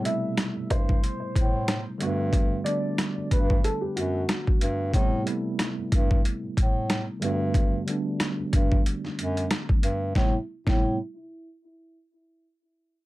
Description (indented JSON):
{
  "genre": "hip hop, boom-bap hip-hop",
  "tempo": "92 BPM",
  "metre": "4/4",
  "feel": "swing 57% on 16ths",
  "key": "A dorian",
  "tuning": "A4 = 438 Hz",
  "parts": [
    { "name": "mellow tine electric piano", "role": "accompaniment", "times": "0.0-11.0 s", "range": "B2 to F#4", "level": "-30 LUFS", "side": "right 1 dB", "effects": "medium stereo tremolo, high-pass filter, low-pass filter" },
    { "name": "dark upright piano", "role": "melody", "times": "0.1-4.9, 10.2-11.0 s", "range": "E4 to E5", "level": "-32 LUFS", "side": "equal", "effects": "high-pass filter, low-pass filter, digital delay" },
    { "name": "boom bap sampler-style drum kit", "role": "drums", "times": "0.1-10.8 s", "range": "hi-hat, kick drum, rim click, snare drum", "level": "-24 LUFS", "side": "equal", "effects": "overdrive" },
    { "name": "mellow bass clarinet", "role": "bass", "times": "0.6-11.0 s", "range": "F#2 to A2", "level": "-29 LUFS", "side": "equal", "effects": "none" }
  ],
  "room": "little or no reverb",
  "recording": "none",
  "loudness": "-23 LUFS",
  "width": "side -18 dB against mid",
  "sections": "0.0-10.2 A section; 10.2-12.8 B section",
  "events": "filter sweep 0.0-10.2",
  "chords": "0.0 Am7; 2.0 Gmaj7; 4.9 Am7; 7.2 Gmaj7; 10.2 Am7"
}